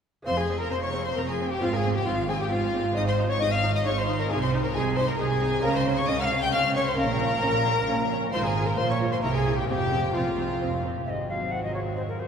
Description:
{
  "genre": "classical, baroque-style concerto movement with solo episodes",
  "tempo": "134 BPM",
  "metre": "3/4",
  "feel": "straight",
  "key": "F minor",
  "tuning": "A4 = 436 Hz",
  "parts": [
    { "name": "lute", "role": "accompaniment", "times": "0.2-12.3 s", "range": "F2 to Gb4", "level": "-34 LUFS", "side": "equal", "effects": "none" },
    { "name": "mellow alto recorder", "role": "melody", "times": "0.3-12.3 s", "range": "F4 to G5", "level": "-29 LUFS", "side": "left 2 dB", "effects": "none" },
    { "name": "warm chamber violin section", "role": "melody", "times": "0.3-12.3 s", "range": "Ab4 to G6", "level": "-32 LUFS", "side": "left 4 dB", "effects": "none" },
    { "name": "rich chamber violin section", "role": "second line", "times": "0.3-12.3 s", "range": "C4 to G5", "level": "-31 LUFS", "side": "left 2 dB", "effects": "none" },
    { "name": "rich studio viola section", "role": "accompaniment", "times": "0.3-12.3 s", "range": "Gb3 to F4", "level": "-34 LUFS", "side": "right 1 dB", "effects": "none" },
    { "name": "rich chamber double bass section", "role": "bass", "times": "0.3-12.3 s", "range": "F1 to Db2", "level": "-31 LUFS", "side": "right 3 dB", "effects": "none" },
    { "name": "rich symphonic cello section", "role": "bass", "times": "0.3-12.3 s", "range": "F2 to Db3", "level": "-31 LUFS", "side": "right 3 dB", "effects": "none" }
  ],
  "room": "wet cathedral reverb, RT60 7.2 s",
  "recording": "recorded in a church or concert hall",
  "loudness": "-23 LUFS",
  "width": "side -7 dB against mid",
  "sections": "0.3-11.1 A section; 11.1-12.3 B section",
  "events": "none",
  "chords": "0.3 Fm; 1.6 Fm/Ab; 3.0 Ab; 4.3 Ab/C; 5.6 Db; 7.0 Bbm; 8.3 Fm/Ab; 8.8 Bbm; 9.2 C; 9.7 Fm; 11.1 Ab7"
}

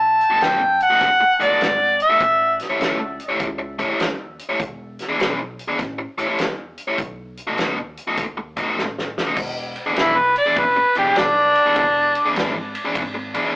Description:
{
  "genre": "electric blues shuffle",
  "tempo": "100 BPM",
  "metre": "4/4",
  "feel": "swing 66% on 8ths",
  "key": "E mixolydian",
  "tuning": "A4 = 440 Hz",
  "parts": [
    { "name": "mellow harmonica", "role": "melody", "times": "0.0-2.6, 10.0-12.3 s", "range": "D4 to A5", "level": "-16 LUFS", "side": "equal", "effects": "overdrive, analog delay" },
    { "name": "upright bass", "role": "bass", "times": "0.0-13.3 s", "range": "E1 to F#2", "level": "-36 LUFS", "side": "equal", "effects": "none" },
    { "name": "natural country drum kit", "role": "drums", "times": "0.2-13.4 s", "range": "crash cymbal, hi-hat, kick drum, ride cymbal, snare drum", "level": "-26 LUFS", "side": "equal", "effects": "none" },
    { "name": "biting overdriven guitar", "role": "riff", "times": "0.3-13.6 s", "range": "B2 to C#5", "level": "-22 LUFS", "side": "equal", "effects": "none" }
  ],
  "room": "moderate studio reverb, RT60 0.6 s",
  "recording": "rough rehearsal-room recording, warm saturation, AM radio sound",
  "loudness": "-17 LUFS",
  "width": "side -23 dB against mid",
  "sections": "0.0-9.4 A section; 9.4-13.6 B section",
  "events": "drum fill 8.8-9.4; harmonica solo 9.4-13.6",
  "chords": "0.0 B7; 2.2 A7; 4.6 E7; 5.8 A7; 7.0 B7; 9.4 E7"
}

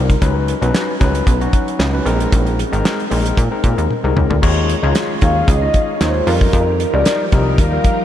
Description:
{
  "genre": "early-eighties boogie funk",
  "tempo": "114 BPM",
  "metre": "4/4",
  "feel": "straight",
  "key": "unclear",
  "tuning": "A4 = 439 Hz",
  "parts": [
    { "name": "overdriven tine electric piano", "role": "accompaniment", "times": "0.0-8.0 s", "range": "Gb3 to Eb5", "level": "-20 LUFS", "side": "moving between left 6 dB and right 1 dB", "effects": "auto-pan" },
    { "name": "plucky analog bass", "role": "bass", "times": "0.0-7.8 s", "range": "Ab1 to Bb2", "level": "-17 LUFS", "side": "equal", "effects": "none" },
    { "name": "damped 70s drum kit", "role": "drums", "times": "0.1-8.0 s", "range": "crash cymbal, handclaps, hi-hat, kick drum, snare drum, toms", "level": "-18 LUFS", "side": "equal", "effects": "none" },
    { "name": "string machine, full ensemble", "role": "sustained chords", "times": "4.4-8.0 s", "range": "Eb3 to Bb4", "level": "-25 LUFS", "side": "equal", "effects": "ensemble chorus" },
    { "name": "mellow horn-like synth lead", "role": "melody", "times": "5.2-8.0 s", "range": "Bb4 to F5", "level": "-19 LUFS", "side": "equal", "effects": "chorus, diffuse ambient delay" }
  ],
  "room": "moderate huge ambient reverb, RT60 6.7 s",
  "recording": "dreamy mix soaked in reverb",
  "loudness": "-13 LUFS",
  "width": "side -11 dB against mid",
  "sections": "0.0-4.4 A section; 4.4-8.0 B section",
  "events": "drum fill 3.9-4.4",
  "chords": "0.2 Db9sus4; 2.1 Bb9sus4; 4.4 Eb9sus4; 6.3 F9sus4"
}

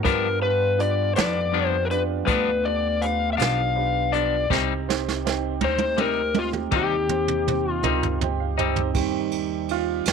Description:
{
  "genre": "slow blues",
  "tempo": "54 BPM (dotted quarters)",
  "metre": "12/8",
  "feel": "straight",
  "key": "C minor",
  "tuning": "A4 = 444 Hz",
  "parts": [
    { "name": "overdriven slide guitar", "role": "melody", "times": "0.0-8.2 s", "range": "F4 to F5", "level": "-24 LUFS", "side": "left 6 dB", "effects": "none" },
    { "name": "clean electric guitar", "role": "accompaniment", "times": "0.0-8.8 s", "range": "G2 to Eb4", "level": "-26 LUFS", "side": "left 14 dB", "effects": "tremolo" },
    { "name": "clear upright piano", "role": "accompaniment", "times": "0.0-10.1 s", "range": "Eb3 to G5", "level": "-29 LUFS", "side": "right 14 dB", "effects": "none" },
    { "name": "tonewheel organ", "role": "sustained chords", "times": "0.0-10.1 s", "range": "B3 to G4", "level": "-33 LUFS", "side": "right 12 dB", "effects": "slow rotary speaker" },
    { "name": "jazz brush drum kit", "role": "drums", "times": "0.0-10.1 s", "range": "hi-hat, kick drum, ride cymbal, snare drum, toms", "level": "-27 LUFS", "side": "right 5 dB", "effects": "none" },
    { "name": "upright bass", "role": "bass", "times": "0.1-10.1 s", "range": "B1 to G2", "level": "-28 LUFS", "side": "equal", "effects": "none" }
  ],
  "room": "light reverb, studio reverb",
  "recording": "1960s-style stereo with parts hard left and right",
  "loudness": "-21 LUFS",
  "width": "side -6 dB against mid",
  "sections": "0.0-8.9 A section; 8.9-10.1 B section",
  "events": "drum fill 4.5-8.9; upright piano fill 7.8-8.9; upright piano solo 8.9-10.1",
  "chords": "0.0 G7; 4.5 Cm"
}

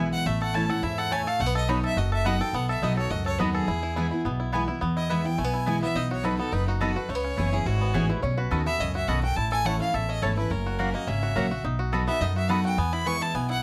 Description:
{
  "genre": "bluegrass",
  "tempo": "211 BPM",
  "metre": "4/4",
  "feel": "straight",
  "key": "E major",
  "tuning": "A4 = 441 Hz",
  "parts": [
    { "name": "picked steel-string acoustic guitar", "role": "accompaniment", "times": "0.0-13.6 s", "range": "E2 to G#4", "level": "-32 LUFS", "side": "equal", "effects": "none" },
    { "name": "mandolin", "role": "stabs", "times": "0.0-13.2 s", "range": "A3 to B5", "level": "-33 LUFS", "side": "equal", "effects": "none" },
    { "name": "upright bass", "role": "bass", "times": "0.0-13.6 s", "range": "F#1 to F#2", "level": "-31 LUFS", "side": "equal", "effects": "none" },
    { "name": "clear fiddle", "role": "melody", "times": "0.1-13.6 s", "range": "D#4 to C#6", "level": "-32 LUFS", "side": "equal", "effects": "none" },
    { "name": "bluegrass banjo", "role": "arpeggios", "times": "0.3-13.6 s", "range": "A3 to A4", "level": "-34 LUFS", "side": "equal", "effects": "none" },
    { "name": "lap resonator guitar", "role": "second line", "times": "7.9-8.6 s", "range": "G#4 to C#5", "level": "-36 LUFS", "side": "equal", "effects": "none" }
  ],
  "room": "light reverb",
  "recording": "close, detailed microphones",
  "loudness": "-26 LUFS",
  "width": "mono",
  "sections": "0.0-4.8 A section; 4.8-13.6 B section",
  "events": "fiddle solo 4.8-13.6",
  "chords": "0.3 A; 1.4 B; 3.7 E; 6.0 B; 7.1 C#m7; 8.2 Badd9; 9.4 A; 10.5 F#; 11.6 B; 12.8 E"
}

